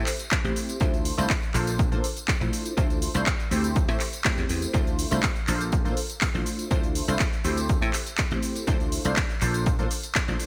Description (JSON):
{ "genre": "filtered disco house", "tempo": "122 BPM", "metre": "4/4", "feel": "straight", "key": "D minor", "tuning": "A4 = 443 Hz", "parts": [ { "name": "funky polysynth comp", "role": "accompaniment", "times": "0.0-10.5 s", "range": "A3 to C5", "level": "-32 LUFS", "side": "equal", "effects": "chorus, phaser, cassette tape, sidechain pumping" }, { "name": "dry thumbed slap bass", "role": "bass", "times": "0.0-10.4 s", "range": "A1 to Bb2", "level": "-31 LUFS", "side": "equal", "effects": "tube saturation, sidechain pumping" }, { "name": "house drum kit", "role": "drums", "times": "0.1-10.5 s", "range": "cabasa, handclaps, hi-hat", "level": "-32 LUFS", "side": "equal", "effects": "sidechain pumping on hats, sidechain pumping on perc, gated reverb" }, { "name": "tambourine", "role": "percussion", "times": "0.2-10.4 s", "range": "none", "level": "-43 LUFS", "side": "equal", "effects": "sidechain pumping on perc" }, { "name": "electronic kick drum", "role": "drums", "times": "0.3-10.3 s", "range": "none", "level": "-29 LUFS", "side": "equal", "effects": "overdrive" } ], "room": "light reverb, digital ambience", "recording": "bright 1980s-style digital production", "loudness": "-25 LUFS", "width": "mono", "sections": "0.0-10.5 A section", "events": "none", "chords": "0.0 Am7; 0.8 Dm7; 1.5 Bbmaj7; 2.5 Dm7; 3.8 Am7; 4.7 Dm7; 5.5 Bbmaj7; 6.5 Dm7; 7.7 Am7; 8.7 Dm7; 9.4 Bbmaj7", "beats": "0.32 | 0.81 1.30 1.79 2.29 | 2.78 3.27 3.76 4.25 | 4.74 5.24 5.73 6.22 | 6.71 7.20 7.69 8.19 | 8.68 9.17 9.66 10.15" }